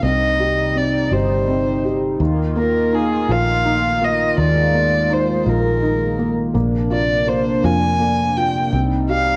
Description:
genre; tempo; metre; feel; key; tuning
six-eight pop ballad; 55 BPM (dotted quarters); 6/8; straight; Eb major; A4 = 439 Hz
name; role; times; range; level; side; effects
dark violin; melody; 0.0-9.4 s; Ab4 to Ab5; -22 LUFS; equal; none
felt-muted upright piano; accompaniment; 0.0-9.4 s; Eb3 to G4; -25 LUFS; equal; none
chorused pulse-width pad; sustained chords; 0.0-9.4 s; C3 to F4; -25 LUFS; equal; none
fingered electric bass; bass; 0.0-9.4 s; G1 to F2; -24 LUFS; equal; none
room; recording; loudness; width
light reverb, studio ambience; none; -18 LUFS; mono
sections
0.0-9.4 A section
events
none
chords
0.0 Cm; 2.2 Ebsus2; 6.6 Bbadd9; 8.7 Cm

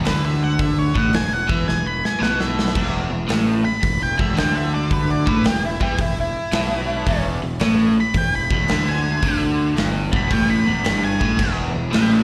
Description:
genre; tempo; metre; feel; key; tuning
blues rock power trio and southern rock; 111 BPM; 4/4; swing 67% on 8ths; unclear; A4 = 445 Hz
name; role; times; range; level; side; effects
overdriven electric guitar; riff; 0.0-12.2 s; E2 to E3; -24 LUFS; equal; slapback echo
fuzz picked electric bass; bass; 0.0-12.2 s; E1 to E2; -27 LUFS; equal; overdrive
octave-fuzz lead guitar; melody; 0.1-12.2 s; E4 to B5; -26 LUFS; equal; distortion, slapback echo, analog delay
big rock drum kit; drums; 0.1-12.1 s; crash cymbal, hi-hat, kick drum, snare drum; -26 LUFS; equal; none
room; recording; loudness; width
studio ambience; live gig heard through the venue's PA, recital hall reverb; -20 LUFS; mono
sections
0.0-12.2 A section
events
lead electric guitar solo 0.0-12.2; drum fill 1.7-2.8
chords
0.0 E5

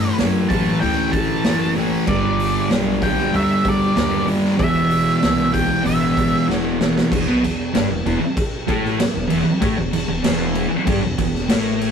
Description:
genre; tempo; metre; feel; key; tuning
garage rock duo or trio; 95 BPM; 4/4; straight; E minor; A4 = 440 Hz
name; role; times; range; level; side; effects
octave-fuzz lead guitar; melody; 0.0-6.4 s; D5 to A5; -22 LUFS; equal; distortion
thick fuzz guitar; riff; 0.0-11.9 s; E2 to B3; -18 LUFS; equal; distortion
upright bass; bass; 0.0-11.9 s; E1 to F#2; -27 LUFS; equal; none
raw garage drum kit; drums; 0.2-11.9 s; crash cymbal, hi-hat, kick drum, snare drum; -23 LUFS; equal; none
room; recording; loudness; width
wet small room reverb, RT60 0.6 s; rough rehearsal-room recording, tube saturation; -16 LUFS; side -7 dB against mid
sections
0.0-7.1 A section; 7.1-11.9 B section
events
drum fill 6.5-7.1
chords
0.0 A5; 2.1 G; 4.6 E5; 7.1 Em

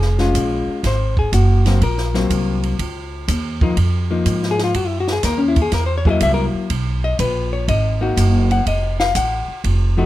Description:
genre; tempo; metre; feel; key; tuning
jazz, small-group swing and bop; 123 BPM; 4/4; swing 68% on 8ths; unclear; A4 = 445 Hz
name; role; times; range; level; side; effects
hollow-body jazz guitar; accompaniment; 0.0-10.1 s; F3 to F#5; -20 LUFS; left 4 dB; none
upright bass; bass; 0.0-10.1 s; F1 to Ab2; -18 LUFS; right 1 dB; none
compact cocktail drum kit; drums; 0.0-9.8 s; hi-hat, kick drum, ride cymbal, snare drum; -24 LUFS; right 1 dB; none
room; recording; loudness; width
light reverb; minimal, uncompressed stereo recording; -16 LUFS; side -15 dB against mid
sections
0.0-10.1 A section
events
none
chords
0.0 Bbm7; 0.8 Ab9; 2.8 Db69; 4.7 Gb7; 6.7 Bmaj7; 8.7 F7b9

